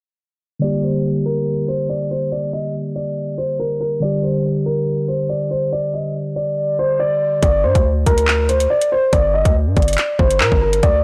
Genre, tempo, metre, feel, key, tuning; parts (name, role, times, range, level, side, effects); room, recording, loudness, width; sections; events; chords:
hip hop, drill; 141 BPM; 4/4; half-time; G minor; A4 = 442 Hz
dark grand piano; melody; 0.6-11.0 s; Bb4 to Eb5; -21 LUFS; equal; low-pass filter, delay
mellow tine electric piano; accompaniment; 0.6-7.4 s; D3 to G4; -24 LUFS; equal
distorted 808-style bass; bass; 7.4-11.0 s; G1 to Bb2; -21 LUFS; equal; distortion
drill drum kit; drums; 7.4-10.9 s; handclaps, hi-hat, kick drum; -20 LUFS; equal
digital ambience; blown-out, overdriven recording, overdrive, low-pass filter; -18 LUFS; mono
0.6-7.4 A section; 7.4-11.0 B section
filter sweep 0.6-7.4
0.6 Gm; 4.0 Dsus4; 7.4 Gm